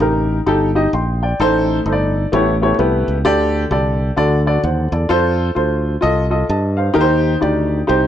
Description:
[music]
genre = uptempo gospel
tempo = 129 BPM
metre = 4/4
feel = swing 62% on 8ths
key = unclear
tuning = A4 = 440 Hz
[part]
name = warm baby grand piano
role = accompaniment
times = 0.0-8.1 s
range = A2 to C6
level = -16 LUFS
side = left 1 dB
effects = none
[part]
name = modern bright fingered electric bass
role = bass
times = 0.0-8.1 s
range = G1 to G2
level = -18 LUFS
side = equal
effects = none
[sound]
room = light reverb, small room ambience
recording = none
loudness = -14 LUFS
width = side -10 dB against mid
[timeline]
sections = 0.0-8.1 A section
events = none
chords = 0.0 Cm; 1.4 Adim; 2.3 A9; 3.2 Dsus4; 4.2 D; 5.1 F; 7.0 Cm

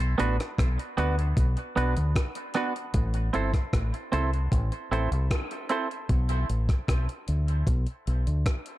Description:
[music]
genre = dub reggae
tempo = 76 BPM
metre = 4/4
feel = straight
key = A dorian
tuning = A4 = 442 Hz
[part]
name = deep dub fingered electric bass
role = bass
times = 0.0-8.4 s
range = G1 to D2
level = -26 LUFS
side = equal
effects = none
[part]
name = semi-hollow electric guitar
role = accompaniment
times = 0.2-5.9 s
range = B3 to C5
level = -31 LUFS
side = right 3 dB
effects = high-pass filter, dub echo
[part]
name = breakbeat sampler-style drum kit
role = drums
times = 0.2-8.8 s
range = hi-hat, kick drum, rim click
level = -27 LUFS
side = equal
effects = none
[sound]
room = light reverb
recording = dark, warm production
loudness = -24 LUFS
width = side -16 dB against mid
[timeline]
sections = 0.0-2.9 A section; 2.9-8.8 B section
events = none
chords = 0.0 Bm; 2.9 Am; 6.1 Bm

